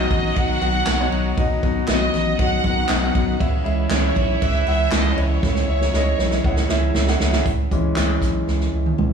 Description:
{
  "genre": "piano-driven pop",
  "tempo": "118 BPM",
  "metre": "4/4",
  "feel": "straight",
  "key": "C# minor",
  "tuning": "A4 = 440 Hz",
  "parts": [
    { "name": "warm symphonic violin section", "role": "melody", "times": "0.0-7.0 s", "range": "C#5 to F#5", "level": "-25 LUFS", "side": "right 2 dB", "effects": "tape echo" },
    { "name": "muted French horn section", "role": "second line", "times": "0.0-7.2 s", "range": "C#3 to F#4", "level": "-32 LUFS", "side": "right 3 dB", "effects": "none" },
    { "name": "bright concert grand piano", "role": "accompaniment", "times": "0.0-9.1 s", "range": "B2 to F#5", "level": "-25 LUFS", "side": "left 5 dB", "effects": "none" },
    { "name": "mellow tonewheel organ", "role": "sustained chords", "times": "0.0-9.1 s", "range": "B2 to E5", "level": "-32 LUFS", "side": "right 3 dB", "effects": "none" },
    { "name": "direct-recorded clean electric guitar", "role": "riff", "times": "0.0-7.5 s", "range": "B2 to F#4", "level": "-31 LUFS", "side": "right 9 dB", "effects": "wide subtle chorus" },
    { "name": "round analog bass", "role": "bass", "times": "0.0-9.1 s", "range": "A1 to C#2", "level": "-22 LUFS", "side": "equal", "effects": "none" },
    { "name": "unplugged drum kit", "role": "drums", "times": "0.1-9.1 s", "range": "handclaps, hi-hat, kick drum, ride cymbal, snare drum, toms", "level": "-23 LUFS", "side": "right 1 dB", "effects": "none" }
  ],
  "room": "little or no reverb",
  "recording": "studio reverb",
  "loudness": "-17 LUFS",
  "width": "side -6 dB against mid",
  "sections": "0.0-7.5 A section; 7.5-9.1 B section",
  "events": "drum fill 5.4-7.5, 8.5-9.1; grand piano solo 7.5-9.1",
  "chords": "0.0 B; 3.4 C#m"
}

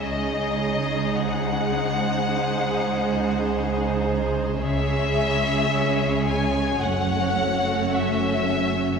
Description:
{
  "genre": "classical, slow romantic movement for string orchestra",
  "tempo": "53 BPM",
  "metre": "4/4",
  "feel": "rubato",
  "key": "unclear",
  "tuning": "A4 = 440 Hz",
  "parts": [
    { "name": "rich studio violin section", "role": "melody", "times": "0.0-9.0 s", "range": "D#5 to G#5", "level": "-26 LUFS", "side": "left 4 dB", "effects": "none" },
    { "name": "clear studio violin section", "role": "second line", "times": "0.0-9.0 s", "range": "F#4 to C#5", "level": "-28 LUFS", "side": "equal", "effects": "none" },
    { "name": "rich studio double bass section", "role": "bass", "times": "0.0-9.0 s", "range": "F#1 to C#2", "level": "-30 LUFS", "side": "right 3 dB", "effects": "none" },
    { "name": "dark studio viola section", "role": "accompaniment", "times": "0.1-9.0 s", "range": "G#3 to D#4", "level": "-26 LUFS", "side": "right 3 dB", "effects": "none" },
    { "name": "rich studio cello section", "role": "bass", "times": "0.1-9.0 s", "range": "F#2 to C#3", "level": "-28 LUFS", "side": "right 1 dB", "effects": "none" }
  ],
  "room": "wet concert hall reverb, RT60 2.1 s",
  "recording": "heard from further back in the room",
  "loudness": "-21 LUFS",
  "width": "side -6 dB against mid",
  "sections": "0.0-9.0 A section",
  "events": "none",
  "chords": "0.0 G#7/C#; 4.6 C#m; 6.8 F#m"
}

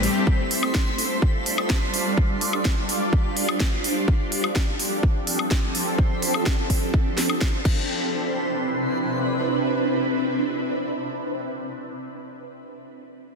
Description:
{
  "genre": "progressive house",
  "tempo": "126 BPM",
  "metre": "4/4",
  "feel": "straight",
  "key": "C major",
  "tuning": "A4 = 440 Hz",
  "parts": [
    { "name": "shimmering ambient pad", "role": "sustained chords", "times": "0.0-11.8 s", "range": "C3 to D5", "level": "-25 LUFS", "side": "right 1 dB", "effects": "chorus, built-in reverb, phaser, vintage 12-bit sampler grit, sidechain pumping" },
    { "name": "house drum kit", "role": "drums", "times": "0.0-7.7 s", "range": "crash cymbal, hi-hat, snare drum, woodblock", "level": "-27 LUFS", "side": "left 1 dB", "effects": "sidechain pumping on hats, sidechain pumping on perc, sidechain pumping on cymbals" },
    { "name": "backwards swelling texture", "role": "texture", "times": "0.0-7.9 s", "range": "C5 to B6", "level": "-33 LUFS", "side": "right 1 dB", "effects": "built-in reverb, sidechain pumping" },
    { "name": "electronic kick drum", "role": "drums", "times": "0.3-7.7 s", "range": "none", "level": "-22 LUFS", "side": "equal", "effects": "none" }
  ],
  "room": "moderate lush hall reverb, RT60 2.1 s",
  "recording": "dense, heavily limited modern master",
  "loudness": "-21 LUFS",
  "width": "side -4 dB against mid",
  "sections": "0.0-7.9 A section; 7.9-11.7 B section",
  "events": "none",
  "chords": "0.3 G7; 4.1 F6; 7.7 Cmaj7"
}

